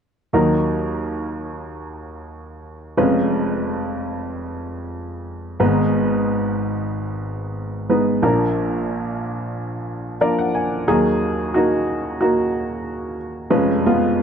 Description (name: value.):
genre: folk.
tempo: 91 BPM.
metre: 4/4.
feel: straight.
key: Eb minor.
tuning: A4 = 439 Hz.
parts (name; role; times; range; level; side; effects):
clear upright piano; melody; 0.3-14.2 s; F1 to Ab5; -19 LUFS; equal; none.
room: light reverb.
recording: dry, close 1970s-style studio recording.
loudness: -18 LUFS.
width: side -7 dB against mid.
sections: 0.3-10.9 A section; 10.9-14.2 B section.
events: upright piano fill 9.9-10.9.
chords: 0.3 Ebm; 3.0 Db7/F; 5.6 Abm; 8.2 Bb; 10.9 Ebm; 13.5 Db7/F.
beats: | 0.33 1.00 1.66 2.32 | 2.97 3.63 4.29 4.94 | 5.60 6.25 6.91 7.57 | 8.23 8.88 9.54 10.21 | 10.87 11.53 12.19 12.85 | 13.51 14.17.